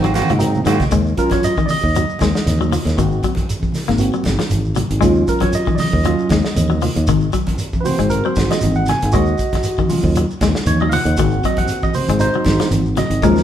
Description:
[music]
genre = afrobeat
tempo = 117 BPM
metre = 4/4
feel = swing 54% on 16ths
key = Eb dorian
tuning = A4 = 441 Hz
[part]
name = barky tine electric piano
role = accompaniment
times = 0.0-13.4 s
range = F3 to Ab5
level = -20 LUFS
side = right 2 dB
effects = phaser
[part]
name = clean electric guitar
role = arpeggios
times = 0.0-13.4 s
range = Eb3 to Bb3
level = -21 LUFS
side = left 6 dB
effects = spring reverb
[part]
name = semi-hollow electric guitar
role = stabs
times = 0.0-0.8 s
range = Eb3 to Gb4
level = -21 LUFS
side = right 5 dB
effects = none
[part]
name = fingered electric bass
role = bass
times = 0.0-13.4 s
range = Ab1 to Ab2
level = -19 LUFS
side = equal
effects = none
[part]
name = warm soul drum kit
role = drums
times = 0.0-13.4 s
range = hi-hat, kick drum, snare drum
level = -22 LUFS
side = equal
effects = none
[part]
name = congas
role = percussion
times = 0.0-13.4 s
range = none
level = -24 LUFS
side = right 1 dB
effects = none
[part]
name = shekere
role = percussion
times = 0.0-13.4 s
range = none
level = -27 LUFS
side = right 2 dB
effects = none
[sound]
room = moderate stone room reverb, RT60 1.0 s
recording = band playing live in one room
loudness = -14 LUFS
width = side -10 dB against mid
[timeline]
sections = 0.9-13.4 A section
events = drum fill 0.0-0.9; tine electric piano fill 0.0-0.9; tine electric piano solo 0.9-13.4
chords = 0.0 Ab9; 0.9 Ebm9; 3.0 Ab9; 5.0 Ebm9; 7.1 Ab9; 9.1 Ebm9; 11.2 Ab9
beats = 0.41 | 0.92 1.44 1.95 2.46 | 2.98 3.49 4.00 4.51 | 5.03 5.54 6.05 6.56 | 7.07 7.59 8.10 8.61 | 9.12 9.63 10.15 10.66 | 11.17 11.69 12.20 12.71 | 13.22

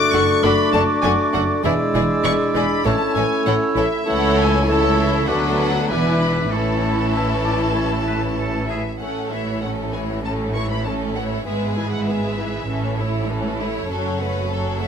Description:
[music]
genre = quick classical-period movement for symphony orchestra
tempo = 98 BPM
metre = 4/4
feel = straight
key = A major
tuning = A4 = 441 Hz
[part]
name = rich chamber violin section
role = melody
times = 0.0-14.9 s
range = B4 to D6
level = -26 LUFS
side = left 4 dB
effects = none
[part]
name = bright oboe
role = second line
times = 0.0-8.8 s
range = G#4 to E5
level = -29 LUFS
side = right 2 dB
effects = none
[part]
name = mellow concert flute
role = second line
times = 0.0-8.7 s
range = C#6 to F#6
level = -27 LUFS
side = right 1 dB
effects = none
[part]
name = warm clarinet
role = second line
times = 0.0-8.6 s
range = E4 to F#4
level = -28 LUFS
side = left 1 dB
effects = none
[part]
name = dark bassoon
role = accompaniment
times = 0.0-8.7 s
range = E3 to A3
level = -25 LUFS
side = right 2 dB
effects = none
[part]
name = mellow French horn section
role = sustained chords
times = 0.0-8.7 s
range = G#3 to D4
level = -25 LUFS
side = left 5 dB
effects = none
[part]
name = rich chamber violin section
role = second line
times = 0.1-14.9 s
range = C#4 to D5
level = -27 LUFS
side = left 2 dB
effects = none
[part]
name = rich chamber viola section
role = accompaniment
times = 0.1-14.9 s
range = E3 to E4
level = -26 LUFS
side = right 1 dB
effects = none
[part]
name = rich chamber double bass section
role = bass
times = 0.1-14.9 s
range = E1 to D2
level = -26 LUFS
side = right 2 dB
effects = none
[part]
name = warm chamber cello section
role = bass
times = 0.1-14.9 s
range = C#2 to A2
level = -26 LUFS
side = right 2 dB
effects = none
[sound]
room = moderate scoring stage reverb, RT60 1.7 s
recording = none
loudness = -17 LUFS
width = side -7 dB against mid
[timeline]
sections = 0.0-9.0 A section; 9.0-14.9 B section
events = none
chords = 0.0 D/F#; 1.6 E7; 2.9 A; 4.1 A/C#; 5.3 Bm7/D; 5.9 E7; 6.5 A; 11.5 E/G#; 12.7 A; 13.9 F#m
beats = 0.43 1.04 | 1.64 2.25 2.85 3.46 | 4.06 4.67 5.28 5.89 | 6.51 7.14 7.76 8.38 | 9.01 9.62 10.24 10.86 | 11.46 12.07 12.68 13.29 | 13.90 14.51

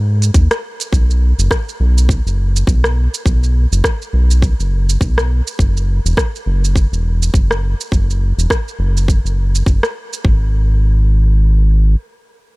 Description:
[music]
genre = organic downtempo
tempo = 103 BPM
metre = 4/4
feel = swing 57% on 16ths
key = unclear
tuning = A4 = 440 Hz
[part]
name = round analog bass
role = bass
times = 0.0-12.0 s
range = E1 to G#2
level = -13 LUFS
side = equal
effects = sidechain pumping
[part]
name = organic electronic drum kit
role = drums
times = 0.2-10.2 s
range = hi-hat, rim click, shaker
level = -22 LUFS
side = right 1 dB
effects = none
[part]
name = electronic kick drum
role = drums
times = 0.3-10.4 s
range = none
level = -14 LUFS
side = equal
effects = none
[sound]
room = little or no reverb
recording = none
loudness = -12 LUFS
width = side -24 dB against mid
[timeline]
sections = 0.0-10.2 A section; 10.2-12.6 B section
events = none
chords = none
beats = 0.34 | 0.93 1.51 2.09 2.67 | 3.26 3.84 4.42 5.00 | 5.59 6.17 6.75 7.33 | 7.92 8.50 9.08 9.66 | 10.25 10.83 11.41

